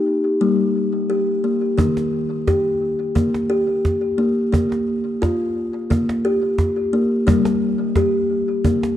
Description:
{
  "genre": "world meditative, meditative tuned percussion",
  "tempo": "87 BPM",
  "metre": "4/4",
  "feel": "straight",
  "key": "unclear",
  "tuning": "A4 = 440 Hz",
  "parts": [
    { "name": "kalimba", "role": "arpeggios", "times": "0.0-9.0 s", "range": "Eb3 to G4", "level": "-18 LUFS", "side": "left 1 dB", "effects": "tape echo" },
    { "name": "cajon", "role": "percussion", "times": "1.8-9.0 s", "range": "none", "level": "-21 LUFS", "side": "right 1 dB", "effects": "none" }
  ],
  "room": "wet concert hall reverb, RT60 2.2 s",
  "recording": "dark, warm production",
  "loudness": "-17 LUFS",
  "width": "side -11 dB against mid",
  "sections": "0.0-1.8 A section; 1.8-9.0 B section",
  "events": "none",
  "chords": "0.4 Gm; 1.8 Eb; 4.5 Bb5; 7.3 Gm"
}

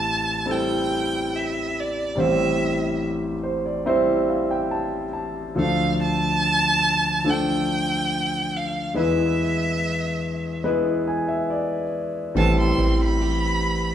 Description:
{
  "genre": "acoustic folk-pop ballad",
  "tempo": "71 BPM",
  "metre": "4/4",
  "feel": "straight",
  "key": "A minor",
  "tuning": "A4 = 439 Hz",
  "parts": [
    { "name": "rich violin", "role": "melody", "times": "0.0-13.9 s", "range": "D5 to C6", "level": "-24 LUFS", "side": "right 2 dB", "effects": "none" },
    { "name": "warm concert grand piano", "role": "accompaniment", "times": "0.0-13.9 s", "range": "A1 to A5", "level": "-22 LUFS", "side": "left 1 dB", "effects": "none" },
    { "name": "picked steel-string acoustic guitar", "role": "arpeggios", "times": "12.4-13.9 s", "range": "E3 to G4", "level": "-26 LUFS", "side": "right 2 dB", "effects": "none" },
    { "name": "woody fretless electric bass", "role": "bass", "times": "12.4-13.9 s", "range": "A1", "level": "-23 LUFS", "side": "right 1 dB", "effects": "none" }
  ],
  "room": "wet stone room reverb, RT60 1.3 s",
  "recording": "band playing live in one room",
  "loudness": "-20 LUFS",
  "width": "side -10 dB against mid",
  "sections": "0.0-13.9 A section",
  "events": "none",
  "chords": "0.0 Am7; 5.6 Dm; 9.0 E; 12.4 Am7"
}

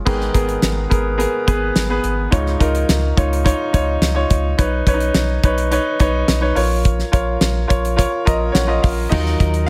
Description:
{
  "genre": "piano-driven pop",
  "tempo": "106 BPM",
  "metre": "4/4",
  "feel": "straight",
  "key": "unclear",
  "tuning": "A4 = 440 Hz",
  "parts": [
    { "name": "clear concert grand piano", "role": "accompaniment", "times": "0.0-9.7 s", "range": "Ab2 to Bb5", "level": "-22 LUFS", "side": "equal", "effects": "none" },
    { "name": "round analog bass", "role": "bass", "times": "0.1-9.7 s", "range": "Ab1 to Eb2", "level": "-23 LUFS", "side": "equal", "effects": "none" },
    { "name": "damped 70s drum kit", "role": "drums", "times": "0.1-9.7 s", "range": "crash cymbal, hi-hat, kick drum, snare drum", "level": "-20 LUFS", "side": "equal", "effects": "none" },
    { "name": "direct-recorded clean electric guitar", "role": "riff", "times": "9.1-9.7 s", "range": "Eb3 to Bb4", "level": "-24 LUFS", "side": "equal", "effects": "spring reverb" }
  ],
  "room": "light reverb, small room ambience",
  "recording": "none",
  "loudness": "-17 LUFS",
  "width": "mono",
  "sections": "0.1-9.1 A section",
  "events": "grand piano fill 8.0-9.1",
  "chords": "0.1 Abmadd9; 2.3 Dbadd9; 4.6 Badd9; 6.6 Bbm; 9.1 Ebmadd9"
}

